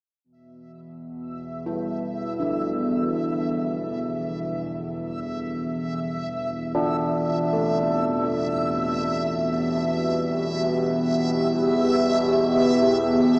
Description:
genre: dark ambient drone.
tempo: free time.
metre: none.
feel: none.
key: unclear.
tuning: A4 = 441 Hz.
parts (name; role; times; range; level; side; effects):
deep dark ambient pad; sustained chords; 5.5-13.4 s; G4; -28 LUFS; equal; chorus, built-in reverb, shimmer reverb.
analog drone; drone; 0.9-13.4 s; E2 to B2; -30 LUFS; equal; chorus, phaser.
backwards swelling texture; texture; 1.3-13.4 s; E5; -31 LUFS; equal; built-in reverb, shimmer reverb.
carillon bells; arpeggios; 1.7-13.4 s; D3 to D4; -31 LUFS; equal; diffuse ambient delay, shimmer reverb.
room: wet cathedral reverb, RT60 6.7 s.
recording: small speaker sound.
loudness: -24 LUFS.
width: mono.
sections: 0.3-13.4 A section.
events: none.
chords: 0.3 Em.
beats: free time.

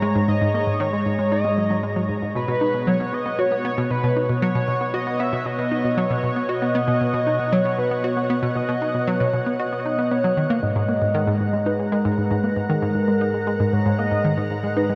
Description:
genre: ambient, sequencer-driven space music.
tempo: 116 BPM.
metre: 4/4.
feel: straight.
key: unclear.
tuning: A4 = 438 Hz.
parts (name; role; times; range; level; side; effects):
pulse-width lead; melody; 0.0-15.0 s; A#4 to E5; -26 LUFS; equal; chorus, analog delay.
lush unison pad; sustained chords; 0.0-15.0 s; G#2 to A#5; -27 LUFS; equal; chorus.
analog pluck; riff; 0.0-15.0 s; G#2 to F#4; -26 LUFS; equal; chorus, analog delay.
room: wet huge ambient reverb, RT60 8.5 s.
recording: in a vast, echoing space, cassette tape.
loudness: -22 LUFS.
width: mono.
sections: 0.0-15.0 A section.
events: none.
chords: 0.0 G#sus2; 2.4 Badd9; 10.6 G#sus2.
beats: | 0.28 0.80 1.32 1.83 | 2.35 2.87 3.39 3.90 | 4.42 4.94 5.46 5.97 | 6.49 7.01 7.53 8.04 | 8.56 9.08 9.59 10.11 | 10.63 11.14 11.66 12.18 | 12.70 13.21 13.73 14.25 | 14.77.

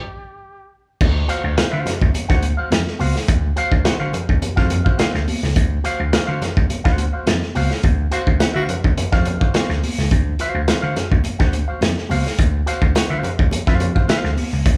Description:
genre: funk.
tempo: 105 BPM.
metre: 4/4.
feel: straight.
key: unclear.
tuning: A4 = 441 Hz.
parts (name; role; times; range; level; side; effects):
brilliant trumpet; melody; 0.0-0.7 s; G4; -41 LUFS; equal; none.
vintage slap bass; bass; 1.0-14.8 s; C#2 to D3; -24 LUFS; equal; none.
crunchy breakbeat drum kit; drums; 1.0-14.8 s; crash cymbal, hi-hat, kick drum, snare drum; -21 LUFS; equal; none.
congas; percussion; 1.0-14.8 s; none; -30 LUFS; equal; none.
electric guitar with an envelope filter; accompaniment; 1.3-14.3 s; F#4 to F#5; -28 LUFS; equal; none.
growling tenor saxophone; second line; 8.1-8.6 s; F#4; -28 LUFS; equal; none.
room: moderate large studio reverb, RT60 1.2 s.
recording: band playing live in one room.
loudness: -19 LUFS.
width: mono.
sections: 0.0-1.0 A section; 1.0-14.8 B section.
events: stop 0.0-1.0; band accent 7.8-10.1.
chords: 0.0 N.C.; 1.0 D7#9.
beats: 0.43 | 1.00 1.57 2.15 2.71 | 3.28 3.85 4.42 4.99 | 5.56 6.13 6.70 7.27 | 7.84 8.41 8.98 9.54 | 10.11 10.68 11.25 11.82 | 12.39 12.95 13.52 14.09 | 14.66.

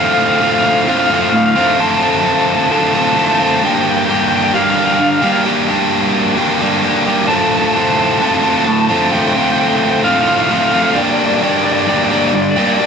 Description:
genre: rock.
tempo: 66 BPM.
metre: 4/4.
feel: straight.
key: D minor.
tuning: A4 = 441 Hz.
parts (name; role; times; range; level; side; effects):
electric guitar through a small old amp; melody; 0.0-12.9 s; D5 to A5; -16 LUFS; equal; slapback echo.
biting overdriven guitar; riff; 0.0-12.9 s; D2 to G4; -13 LUFS; equal; none.
room: light reverb.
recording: none.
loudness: -11 LUFS.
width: side -6 dB against mid.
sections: 0.0-12.9 A section.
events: none.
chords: 0.0 Dm7; 3.6 Gm7; 7.3 Dm7; 11.0 Gm.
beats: 0.88 1.79 2.71 | 3.63 4.54 5.46 6.37 | 7.29 8.21 9.12 10.04 | 10.96 11.88 12.80.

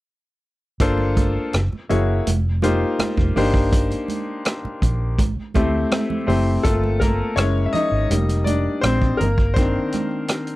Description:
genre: lush 1970s-style soul.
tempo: 82 BPM.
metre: 4/4.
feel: straight.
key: G minor.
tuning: A4 = 438 Hz.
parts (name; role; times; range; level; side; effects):
bright baby grand piano; accompaniment; 0.8-10.6 s; Eb3 to E5; -21 LUFS; left 2 dB; none.
vintage muted fingered electric bass; bass; 0.8-9.8 s; F1 to D2; -21 LUFS; equal; none.
vintage drum kit; drums; 0.8-10.6 s; hi-hat, kick drum, rim click; -22 LUFS; equal; none.
congas; percussion; 1.0-10.1 s; none; -29 LUFS; right 7 dB; none.
room: little or no reverb.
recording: dry, close 1970s-style studio recording.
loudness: -18 LUFS.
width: side -18 dB against mid.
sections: 0.8-6.6 A section; 6.6-10.6 B section.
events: grand piano solo 6.6-10.6.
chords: 0.8 Gm11; 1.5 F#9; 2.3 F7sus4; 3.4 Cm7/G; 5.2 Am7; 6.6 Gm11; 7.4 F#9; 8.1 F7sus4; 9.2 Cm7/G.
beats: | 0.80 1.53 2.27 3.00 | 3.73 4.46 5.19 5.92 | 6.65 7.38 8.11 8.84 | 9.57 10.30.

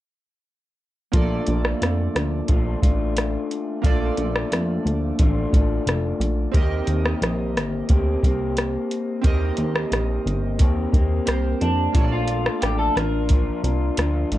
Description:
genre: indie pop, bedroom pop.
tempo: 89 BPM.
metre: 4/4.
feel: straight.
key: Bb major.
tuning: A4 = 442 Hz.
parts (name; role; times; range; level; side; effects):
chorused retro synth keys; accompaniment; 1.1-14.4 s; Bb3 to A5; -30 LUFS; right 5 dB; cassette tape.
electric guitar through a small old amp; accompaniment; 1.1-14.4 s; Bb2 to G4; -26 LUFS; left 3 dB; lush chorus, vibrato effect.
plucky analog bass; bass; 1.1-14.4 s; F1 to F2; -24 LUFS; equal; none.
soft vintage rhythm box; drums; 1.1-14.4 s; hi-hat, kick drum, rim click; -20 LUFS; equal; vintage 12-bit sampler grit.
electric guitar through a small old amp; melody; 11.6-14.3 s; D4 to Bb4; -26 LUFS; equal; lush chorus.
room: light reverb.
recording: none.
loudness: -19 LUFS.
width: side -14 dB against mid.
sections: 1.1-11.9 A section; 11.9-14.4 B section.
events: none.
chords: 1.1 Bbmaj7; 6.5 Eb6; 11.9 Bbmaj7.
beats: | 1.14 1.81 2.49 3.16 | 3.84 4.51 5.19 5.87 | 6.54 7.22 7.89 8.57 | 9.25 9.92 10.60 11.27 | 11.95 12.63 13.30 13.98.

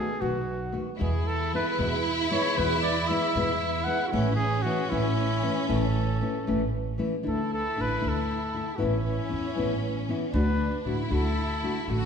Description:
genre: mexican folk, mariachi.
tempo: 77 BPM (dotted quarters).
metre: 6/8.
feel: straight.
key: A major, D major from 7.2 s.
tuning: A4 = 440 Hz.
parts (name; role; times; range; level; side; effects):
mellow trumpet; melody; 0.0-12.1 s; E4 to F#5; -31 LUFS; equal; none.
warm symphonic violin section; second line; 0.0-12.1 s; C#4 to F#4; -32 LUFS; right 1 dB; none.
nylon-string guitar; accompaniment; 0.0-12.0 s; E2 to F#4; -30 LUFS; left 2 dB; none.
upright bass; bass; 0.2-12.1 s; A1 to E2; -29 LUFS; right 1 dB; none.
room: wet recital hall reverb, RT60 1.4 s.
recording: recorded in a church or concert hall.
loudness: -24 LUFS.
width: side -6 dB against mid.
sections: 0.0-7.2 A section; 7.2-12.1 B section.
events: none.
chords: 0.0 B7; 1.0 E; 4.1 A; 7.2 Dsus2; 8.8 Aadd9; 10.3 D/A.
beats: 0.20 | 1.00 1.79 | 2.57 3.35 | 4.13 4.91 | 5.69 6.47 | 7.25 8.03 | 8.81 9.58 | 10.35 11.12 | 11.89.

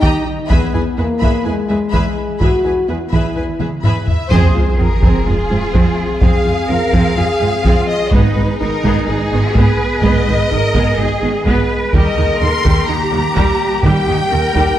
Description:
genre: cinematic, hybrid orchestral and electronic film score.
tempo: 126 BPM.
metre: 4/4.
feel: straight.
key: F minor.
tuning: A4 = 440 Hz.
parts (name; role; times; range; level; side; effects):
warm symphonic violin section; second line; 0.0-14.8 s; G#4 to C6; -24 LUFS; left 2 dB; none.
rich symphonic viola section; accompaniment; 0.0-14.8 s; Eb3 to Eb5; -24 LUFS; right 1 dB; none.
dark French horn section; sustained chords; 0.0-14.8 s; G#3 to Ab4; -21 LUFS; left 3 dB; none.
analog pluck; arpeggios; 0.0-14.7 s; Eb3 to Ab4; -21 LUFS; right 2 dB; chorus, digital delay.
rich symphonic cello section; bass; 0.0-14.8 s; Eb2 to Cb5; -22 LUFS; right 2 dB; none.
taiko ensemble; drums; 0.0-14.8 s; none; -17 LUFS; equal; none.
warm symphonic violin section; melody; 4.1-14.8 s; Ab4 to C6; -22 LUFS; left 2 dB; none.
rich symphonic double bass section; bass; 4.3-14.6 s; Ab1 to F2; -18 LUFS; right 2 dB; none.
sub drop; sound effects; 4.3-6.2 s; none; -18 LUFS; equal; none.
room: moderate scoring stage reverb, RT60 1.6 s.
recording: dark, warm production.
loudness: -12 LUFS.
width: side -12 dB against mid.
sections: 0.0-4.3 A section; 4.3-14.8 A section.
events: drum fill 3.6-4.3; band accent 4.3-4.8; impact 4.3-6.2.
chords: 0.0 Eb; 0.5 E; 4.3 Fm; 8.1 Abm; 11.9 Eb.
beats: 0.03 | 0.51 0.98 1.46 1.93 | 2.41 2.89 3.36 3.84 | 4.32 4.79 5.27 5.74 | 6.22 6.70 7.17 7.65 | 8.12 8.60 9.08 9.55 | 10.03 10.51 10.98 11.46 | 11.93 12.41 12.89 13.36 | 13.84 14.31.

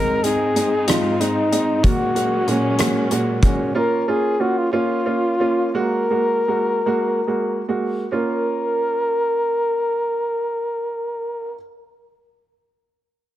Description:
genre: six-eight pop ballad.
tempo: 44-63 BPM (dotted quarters).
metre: 6/8.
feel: straight.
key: Bb minor.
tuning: A4 = 440 Hz.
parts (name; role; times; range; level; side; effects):
breathy flugelhorn; melody; 0.0-11.6 s; Db4 to Bb4; -21 LUFS; left 1 dB; none.
clear upright piano; accompaniment; 0.0-11.6 s; Bb2 to Gb4; -22 LUFS; right 2 dB; none.
warm studio string section; sustained chords; 0.0-3.7 s; Ab2 to Eb4; -28 LUFS; left 1 dB; none.
loose indie drum kit; drums; 0.2-3.6 s; hi-hat, kick drum, rim click; -21 LUFS; equal; soft clipping on snare.
room: light reverb, studio ambience.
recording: dense, heavily limited modern master.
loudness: -18 LUFS.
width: side -13 dB against mid.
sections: 0.0-8.1 A section; 8.1-13.4 B section.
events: slowing down 3.7-8.1.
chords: 0.0 Ab; 1.8 Gbadd9/Bb; 3.7 Bbm; 5.7 Gbadd9; 8.1 Bbm.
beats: 0.88 | 1.84 2.79 | 3.75 4.72 | 5.75 6.87 | 8.12 9.46 | 10.79.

